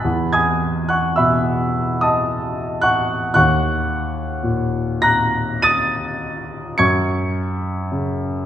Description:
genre	classical, impressionist solo piano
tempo	48-56 BPM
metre	3/4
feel	rubato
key	unclear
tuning	A4 = 440 Hz
part	warm grand piano	solo	0.0-8.5 s	D#2 to D#7	-17 LUFS	equal	none
room	wet recital hall reverb, RT60 1.8 s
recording	recorded in a church or concert hall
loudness	-16 LUFS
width	side -10 dB against mid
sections	0.0-8.5 A section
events	none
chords	0.0 Emaj9; 3.4 D#m7; 6.8 F#sus2

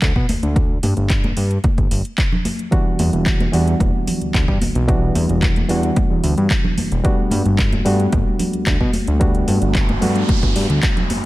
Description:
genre	nu-disco, nu disco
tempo	111 BPM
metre	4/4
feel	straight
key	unclear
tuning	A4 = 439 Hz
part	fat analog bass	bass	0.0-11.2 s	E1 to B2	-19 LUFS	equal	none
part	electronic kick drum	drums	0.0-10.9 s	none	-18 LUFS	equal	overdrive
part	house drum kit	drums	0.0-11.2 s	handclaps, hi-hat	-26 LUFS	equal	overdrive
part	congas	percussion	0.3-11.2 s	none	-26 LUFS	equal	none
part	bright reed electric piano	accompaniment	2.7-11.3 s	E3 to F#4	-21 LUFS	equal	sidechain pumping, analog delay
part	noise sweep	sound effects	9.4-11.3 s	none	-27 LUFS	right 3 dB	none
room	light reverb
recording	none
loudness	-15 LUFS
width	side -17 dB against mid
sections	0.0-11.3 A section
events	noise sweep 9.4-11.3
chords	0.0 G5; 2.7 Em7; 7.0 Gmaj7

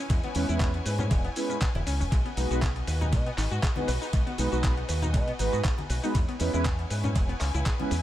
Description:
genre	nu-disco, nu disco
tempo	119 BPM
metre	4/4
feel	swing 54% on 16ths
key	B major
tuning	A4 = 441 Hz
part	clear symphonic string section	sustained chords	0.0-8.0 s	E4 to G#5	-38 LUFS	left 4 dB	sidechain pumping
part	analog pluck	arpeggios	0.0-8.0 s	G#3 to B4	-36 LUFS	left 3 dB	chorus, sidechain pumping, dub echo
part	fingered electric bass with an envelope filter	bass	0.1-8.0 s	E1 to B2	-28 LUFS	equal	none
part	dusty soul sampler-style drum kit	drums	0.1-8.0 s	handclaps, hi-hat, ride cymbal, shaker	-36 LUFS	equal	tape echo
part	electronic kick drum	drums	0.1-7.8 s	none	-26 LUFS	equal	none
part	mellow synth brass	accompaniment	0.3-7.9 s	G#3 to B4	-32 LUFS	right 2 dB	chorus, tape echo
part	congas	percussion	1.0-7.9 s	none	-40 LUFS	left 1 dB	none
room	digital ambience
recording	echo-heavy mix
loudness	-25 LUFS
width	side -13 dB against mid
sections	0.0-8.0 A section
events	none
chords	0.0 E6; 2.1 B6; 6.2 E6

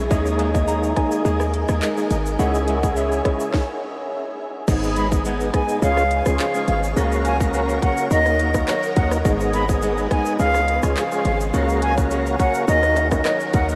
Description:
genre	dancehall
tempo	105 BPM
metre	4/4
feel	straight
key	G# dorian from 4.7 s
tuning	A4 = 440 Hz
part	overdriven tonewheel organ	accompaniment	0.0-13.8 s	G#3 to A#4	-26 LUFS	equal	chorus vibrato, slow rotary speaker
part	granular cloud pad	sustained chords	0.0-13.8 s	A#4 to D#6	-32 LUFS	equal	built-in reverb, analog chorus, sidechain pumping
part	flamenco guitar	arpeggios	0.0-13.8 s	G#2 to E4	-30 LUFS	equal	diffuse ambient delay
part	hard-hitting 808-style bass	bass	0.0-13.8 s	G#1 to D#2	-25 LUFS	equal	none
part	soft synth bell	second line	0.1-3.5 s	C#5 to A#5	-33 LUFS	equal	chorus, phaser, diffuse ambient delay
part	island pop drum kit	drums	0.1-13.8 s	crash cymbal, handclaps, hi-hat, kick drum, rim click, shaker, snare drum	-28 LUFS	equal	none
part	tube shaker and timbales	percussion	0.1-13.8 s	none	-39 LUFS	equal	none
part	breathy silver concert flute	melody	5.0-13.7 s	D#5 to B5	-25 LUFS	equal	diffuse ambient delay
room	wet huge ambient reverb, RT60 8.6 s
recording	dreamy mix soaked in reverb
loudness	-20 LUFS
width	mono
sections	0.0-4.7 A section; 4.7-13.8 B section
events	stop 3.5-4.7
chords	0.1 D#sus4; 2.4 C#m; 3.5 N.C.; 4.7 G#m; 5.8 C#; 7.0 F#/C#; 8.1 D#m; 9.3 G#m; 10.4 C#; 11.5 F#/C#; 12.7 D#m

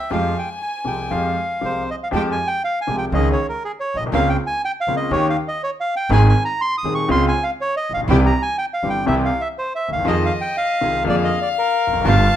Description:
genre	tango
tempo	121 BPM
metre	4/4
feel	rubato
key	F minor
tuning	A4 = 440 Hz
part	bandoneon	melody	0.0-12.4 s	Ab4 to Eb6	-21 LUFS	right 1 dB	none
part	warm violin	second line	0.0-1.9, 10.1-12.4 s	Eb5 to A5	-25 LUFS	left 8 dB	none
part	clear concert grand piano	accompaniment	0.1-12.3 s	Eb1 to Ab4	-21 LUFS	left 2 dB	none
part	warm chamber string section	stabs	0.1-12.3 s	Ab3 to Bb4	-28 LUFS	right 2 dB	none
part	upright bass	bass	0.1-12.3 s	E1 to F2	-21 LUFS	right 2 dB	none
room	moderate large studio reverb, RT60 0.8 s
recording	minimal, uncompressed stereo recording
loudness	-17 LUFS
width	side -11 dB against mid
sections	0.0-2.1 A section; 2.1-12.4 B section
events	none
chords	0.1 Fmadd9; 3.1 Dbsus2; 4.1 Bbmadd9/Db; 5.1 Eb7; 6.1 Ab; 7.1 Dbmaj7; 8.1 C; 10.1 Fm7; 11.1 Bb7/F

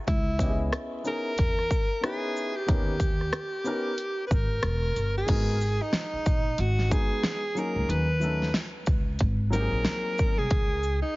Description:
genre	hip hop, jazz-hop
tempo	92 BPM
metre	4/4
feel	swing 60% on 16ths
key	G# minor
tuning	A4 = 440 Hz
part	breathy alto saxophone	melody	0.1-11.2 s	D#4 to B4	-30 LUFS	equal	analog delay
part	upright bass	bass	0.1-11.0 s	E1 to E2	-28 LUFS	equal	none
part	big-room dance drum kit	drums	0.1-11.0 s	crash cymbal, hi-hat, kick drum, rim click, shaker, snare drum	-27 LUFS	equal	none
part	warm grand piano	accompaniment	0.4-10.5 s	F#3 to D#5	-34 LUFS	left 1 dB	none
room	light reverb, small room ambience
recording	heavily compressed radio sound, vinyl crackle, nothing above 7.5 kHz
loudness	-24 LUFS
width	side -21 dB against mid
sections	0.0-5.3 A section; 5.3-11.2 B section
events	none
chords	0.1 C#m9; 2.7 D#7b13; 5.3 G#m9; 7.9 D#m7b5; 9.2 G#7; 10.5 C#sus2

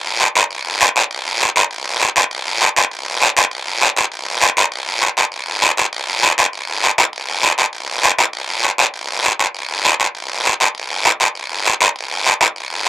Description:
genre	latin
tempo	199 BPM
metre	4/4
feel	straight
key	none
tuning	none
part	guiro	percussion	0.2-12.9 s	none	-14 LUFS	equal	none
room	little or no reverb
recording	dry, close 1970s-style studio recording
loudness	-14 LUFS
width	side -15 dB against mid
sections	0.0-4.7 A section; 4.7-12.9 B section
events	none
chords	none

